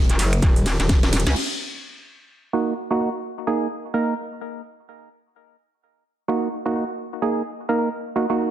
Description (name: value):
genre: bass house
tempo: 128 BPM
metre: 4/4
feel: swing 59% on 16ths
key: Eb minor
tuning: A4 = 439 Hz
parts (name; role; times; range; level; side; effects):
- metallic wobble bass; bass; 0.0-1.3 s; Eb1 to Db2; -20 LUFS; equal; distortion, chorus, sidechain pumping
- house drum kit; drums; 0.1-1.5 s; crash cymbal, finger snaps, hi-hat, ride cymbal, snare drum; -25 LUFS; equal; studio reverb
- electronic kick drum; drums; 0.4-1.0 s; none; -18 LUFS; equal; studio reverb
- percussive organ stab; stabs; 2.5-8.5 s; Bb3 to Bb4; -22 LUFS; right 2 dB; chorus, cassette tape, sidechain pumping, ping-pong delay
room: light reverb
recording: dense, heavily limited modern master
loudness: -20 LUFS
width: side -11 dB against mid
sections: 0.0-1.4 A section; 1.4-8.5 B section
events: drop 0.0-1.4; drum fill 0.7-1.4; band accent 1.2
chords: 0.0 Ebm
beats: 0.42 0.89 | 1.36 1.83 2.30 2.77 | 3.24 3.71 4.17 4.64 | 5.11 5.58 6.05 6.52 | 6.99 7.46 7.92 8.39